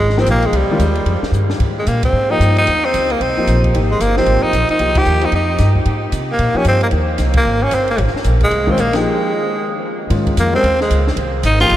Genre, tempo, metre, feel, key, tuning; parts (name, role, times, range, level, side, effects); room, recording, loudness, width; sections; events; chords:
modal jazz; 226 BPM; 4/4; swing 61% on 8ths; Ab major; A4 = 441 Hz
growling tenor saxophone; melody; 0.0-11.8 s; G3 to G4; -16 LUFS; equal
upright bass; bass; 0.0-11.8 s; G1 to C3; -17 LUFS; equal
compact cocktail drum kit; drums; 0.1-11.8 s; hi-hat, kick drum, ride cymbal, snare drum; -25 LUFS; equal
warm grand piano; accompaniment; 0.2-11.7 s; Eb3 to Bb4; -22 LUFS; left 2 dB
wet huge ambient reverb, RT60 8.4 s; in a vast, echoing space; -13 LUFS; side -13 dB against mid
0.0-10.1 A section; 10.1-11.8 B section
drum fill 1.3; band accent 2.0, 4.9, 7.3, 8.9; stop 9.0-10.1; tenor saxophone solo 10.1-11.8
0.0 Abmaj9; 10.1 Abmaj7